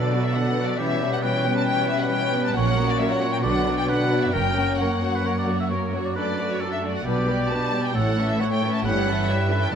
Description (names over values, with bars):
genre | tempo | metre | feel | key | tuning
quick classical-period movement for symphony orchestra | 135 BPM | 4/4 | straight | unclear | A4 = 441 Hz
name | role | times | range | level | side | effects
rich chamber violin section | melody | 0.0-9.8 s | C#5 to A5 | -28 LUFS | left 4 dB | none
dark studio violin section | second line | 0.0-9.8 s | B3 to E5 | -30 LUFS | equal | none
warm oboe | second line | 0.0-9.7 s | G4 to E5 | -29 LUFS | right 1 dB | none
rich symphonic viola section | accompaniment | 0.0-9.8 s | D3 to F#4 | -29 LUFS | right 1 dB | none
mellow French horn section | sustained chords | 0.0-9.8 s | F#3 to D4 | -29 LUFS | left 4 dB | none
rich studio cello section | bass | 0.0-9.8 s | F#2 to B2 | -26 LUFS | right 2 dB | none
clear symphonic double bass section | bass | 2.6-9.8 s | F#1 to B1 | -28 LUFS | right 3 dB | none
room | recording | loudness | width
moderate scoring stage reverb, RT60 1.6 s | none | -20 LUFS | side -7 dB against mid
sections
0.0-9.8 A section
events
none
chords
0.0 Bm; 0.8 C#m7b5/B; 2.6 F#/A#; 3.4 Bm; 4.3 F#; 6.2 D/F#; 7.1 G/B; 8.0 A; 8.8 A7/G